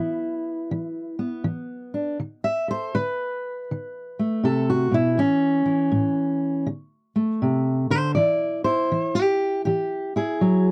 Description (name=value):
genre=acoustic country blues, solo or duo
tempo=80 BPM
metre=4/4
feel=swing 64% on 8ths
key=unclear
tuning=A4 = 440 Hz
part: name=fingerpicked steel-string acoustic guitar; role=solo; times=0.0-10.7 s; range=A2 to E5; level=-24 LUFS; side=equal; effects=none
room=little or no reverb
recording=dry, close 1970s-style studio recording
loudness=-24 LUFS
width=mono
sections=0.0-10.7 A section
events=steel-string acoustic guitar solo 0.0-10.7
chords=0.0 E5; 2.2 D5; 5.2 A; 6.7 D5; 8.2 E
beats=0.70 1.45 | 2.19 2.94 3.69 4.43 | 5.18 5.93 6.67 7.42 | 8.16 8.91 9.65 10.40